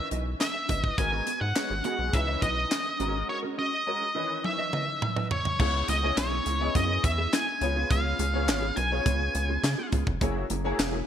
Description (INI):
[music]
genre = early-eighties boogie funk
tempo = 104 BPM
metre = 4/4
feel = straight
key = C# dorian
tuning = A4 = 440 Hz
[part]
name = octave-fuzz lead guitar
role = melody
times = 0.0-9.9 s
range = C#5 to G#5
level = -29 LUFS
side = equal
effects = distortion
[part]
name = clear grand piano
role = accompaniment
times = 0.0-10.9 s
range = D#3 to D#5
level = -34 LUFS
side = left 2 dB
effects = ensemble chorus
[part]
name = mellow electric guitar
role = riff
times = 0.0-11.1 s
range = A#3 to D#5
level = -36 LUFS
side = right 4 dB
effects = analog chorus
[part]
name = rubbery square bass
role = bass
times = 0.1-11.0 s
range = E1 to C#3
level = -30 LUFS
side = equal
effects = none
[part]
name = tight funk drum kit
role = drums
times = 0.1-10.9 s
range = crash cymbal, handclaps, hi-hat, kick drum, snare drum, toms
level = -29 LUFS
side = equal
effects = none
[sound]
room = light reverb, small room reverb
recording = bright 1980s-style digital production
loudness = -25 LUFS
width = side -9 dB against mid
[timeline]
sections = 0.0-5.6 A section; 5.6-11.1 B section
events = drum fill 4.4-5.6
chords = 0.0 C#m9; 1.0 G#m9; 2.1 C#m9; 3.0 G#9sus4; 4.2 C#m9; 5.6 C#m7; 7.6 C#7; 10.2 F#9